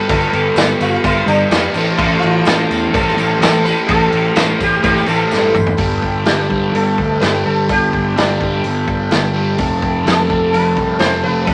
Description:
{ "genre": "psychedelic rock", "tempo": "126 BPM", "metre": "4/4", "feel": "straight", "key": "unclear", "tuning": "A4 = 443 Hz", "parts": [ { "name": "sitar", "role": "melody", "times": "0.0-11.5 s", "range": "D4 to C5", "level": "-21 LUFS", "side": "equal", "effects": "none" }, { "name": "overdriven combo organ", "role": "sustained chords", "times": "0.0-11.5 s", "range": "G4 to B5", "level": "-26 LUFS", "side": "equal", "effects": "none" }, { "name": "fuzz guitar", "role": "riff", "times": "0.0-11.5 s", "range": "F2 to A3", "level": "-21 LUFS", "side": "equal", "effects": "distortion, phaser" }, { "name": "fuzz picked electric bass", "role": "bass", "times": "0.1-11.5 s", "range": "F1 to G2", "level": "-23 LUFS", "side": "equal", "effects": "overdrive" }, { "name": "vintage drum kit", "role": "drums", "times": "0.1-11.5 s", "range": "crash cymbal, hi-hat, kick drum, snare drum, toms", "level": "-20 LUFS", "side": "equal", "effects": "none" }, { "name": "tambourine", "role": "percussion", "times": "0.1-5.7 s", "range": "none", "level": "-40 LUFS", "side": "equal", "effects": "none" } ], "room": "wet studio reverb, RT60 0.6 s", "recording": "none", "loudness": "-15 LUFS", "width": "mono", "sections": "0.0-5.8 A section; 5.8-11.5 B section", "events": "drum fill 5.3-5.8", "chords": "0.0 Gadd9; 1.8 Am7; 5.8 Gadd9; 9.6 F" }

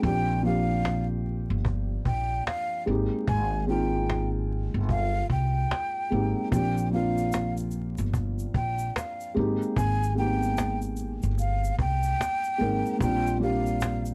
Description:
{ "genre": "lo-fi hip hop", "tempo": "74 BPM", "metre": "4/4", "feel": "swing 61% on 16ths", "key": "Bb mixolydian", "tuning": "A4 = 438 Hz", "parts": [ { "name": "breathy mellow silver concert flute", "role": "melody", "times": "0.0-14.0 s", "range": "F5 to Ab5", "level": "-33 LUFS", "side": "equal", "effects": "none" }, { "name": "felt-muted upright piano", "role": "accompaniment", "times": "0.0-14.1 s", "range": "F3 to Bb4", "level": "-32 LUFS", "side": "equal", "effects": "cassette tape" }, { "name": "upright bass", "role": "bass", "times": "0.0-14.1 s", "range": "G1 to C2", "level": "-31 LUFS", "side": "equal", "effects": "none" }, { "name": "cajon", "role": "drums", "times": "0.0-14.0 s", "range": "none", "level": "-32 LUFS", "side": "equal", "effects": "vintage 12-bit sampler grit" }, { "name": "egg shaker", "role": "percussion", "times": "6.5-14.1 s", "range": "none", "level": "-50 LUFS", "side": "equal", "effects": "none" } ], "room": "light reverb", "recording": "vinyl crackle", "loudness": "-27 LUFS", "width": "mono", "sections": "0.0-14.1 A section", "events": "none", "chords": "0.0 Bb6; 2.9 Abmaj7; 6.5 Bb6; 9.4 Abmaj7; 13.0 Bb6" }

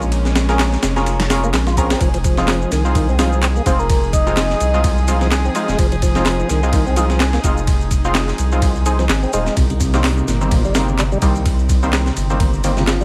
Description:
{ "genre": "breakbeat, breaks", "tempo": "127 BPM", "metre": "4/4", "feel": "swing 56% on 16ths", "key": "F minor", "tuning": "A4 = 440 Hz", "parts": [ { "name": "warm chamber string section", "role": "sustained chords", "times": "0.0-13.0 s", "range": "C3 to Ab4", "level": "-29 LUFS", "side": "equal", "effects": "sidechain pumping" }, { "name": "saturated sub bass", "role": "bass", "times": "0.0-13.0 s", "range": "Eb1 to C2", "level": "-21 LUFS", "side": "equal", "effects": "tube saturation" }, { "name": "electronic shaker and handclaps", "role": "drums", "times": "0.0-13.0 s", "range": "none", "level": "-29 LUFS", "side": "equal", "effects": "none" }, { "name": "breakbeat sampler-style drum kit", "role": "drums", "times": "0.1-13.0 s", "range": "hi-hat, kick drum, ride cymbal, snare drum", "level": "-21 LUFS", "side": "equal", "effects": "none" }, { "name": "orchestra-hit-like synth stab", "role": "stabs", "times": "0.5-12.8 s", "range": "Eb3 to Bb4", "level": "-25 LUFS", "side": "equal", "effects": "built-in reverb, vintage 12-bit sampler grit, delay" }, { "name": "tonewheel organ", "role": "riff", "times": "1.4-13.0 s", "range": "Bb2 to F4", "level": "-25 LUFS", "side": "equal", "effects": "overdrive, fast rotary speaker, delay" }, { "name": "airy dreamy lead", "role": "melody", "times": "3.7-4.8, 11.2-13.0 s", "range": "F4 to Eb5", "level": "-24 LUFS", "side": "equal", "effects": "chorus, AM radio sound, delay" } ], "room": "light reverb", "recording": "vinyl crackle", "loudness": "-17 LUFS", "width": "mono", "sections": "0.0-13.0 A section", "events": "none", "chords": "0.0 Bbm7; 2.0 Fm7; 9.6 Cm7" }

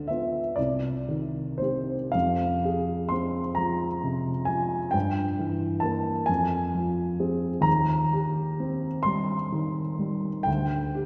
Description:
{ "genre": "classical, romantic nocturne for solo piano", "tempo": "43 BPM (dotted quarters)", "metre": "6/8", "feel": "uneven beats, rubato", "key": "C minor", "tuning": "A4 = 441 Hz", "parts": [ { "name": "warm grand piano", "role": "solo", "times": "0.0-11.1 s", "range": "C2 to C6", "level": "-27 LUFS", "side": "equal", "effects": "none" } ], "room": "wet scoring stage reverb, RT60 2.2 s", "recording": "recorded in a church or concert hall", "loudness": "-27 LUFS", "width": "mono", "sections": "0.0-11.1 A section", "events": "none", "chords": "0.0 Bdim/D; 0.6 Cm; 2.1 Fm; 4.9 Edim/G; 6.3 Fm; 7.7 Cm/Eb; 10.5 G5/D" }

